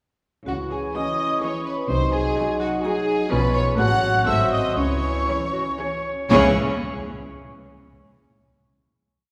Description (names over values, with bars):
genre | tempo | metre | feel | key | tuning
cinematic, playful, whimsical film cue | 116-128 BPM | 3/4 | straight | C# minor | A4 = 440 Hz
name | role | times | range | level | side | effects
vibraphone with medium hard mallets | melody | 0.5-6.6 s | F#4 to F#5 | -30 LUFS | equal | none
bright clarinet | second line | 0.5-6.5 s | E4 to C#5 | -35 LUFS | equal | none
clear studio violin section | second line | 0.5-6.6 s | F#4 to F#5 | -31 LUFS | equal | none
mellow cor anglais | second line | 0.5-6.5 s | B#4 to D#5 | -34 LUFS | equal | none
silver concert flute | second line | 0.5-6.6 s | F#5 to F#6 | -30 LUFS | equal | none
warm French horn section | sustained chords | 0.5-6.5 s | E3 to D#4 | -32 LUFS | equal | none
clear studio cello section | bass | 0.5-6.6 s | G#2 to C#3 | -28 LUFS | equal | none
clear studio double bass section | bass | 0.5-6.6 s | G#1 to C#2 | -29 LUFS | equal | none
rich studio violin section | melody | 0.9-6.6 s | G#4 to A4 | -36 LUFS | equal | none
bright studio viola section | accompaniment | 1.0-6.6 s | E3 to D#4 | -34 LUFS | equal | none
room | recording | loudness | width
wet concert hall reverb, RT60 2.2 s | heard from further back in the room | -22 LUFS | mono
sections
0.5-6.3 A section; 6.3-7.8 final chord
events
none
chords
0.5 C#m; 1.9 G#7/B#; 3.3 C#7/B; 3.8 F#m/A; 4.3 G#7b9; 4.8 C#m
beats
| 0.47 0.95 1.42 | 1.89 2.37 2.84 | 3.31 3.78 4.27 | 4.77 5.28 5.79 | 6.30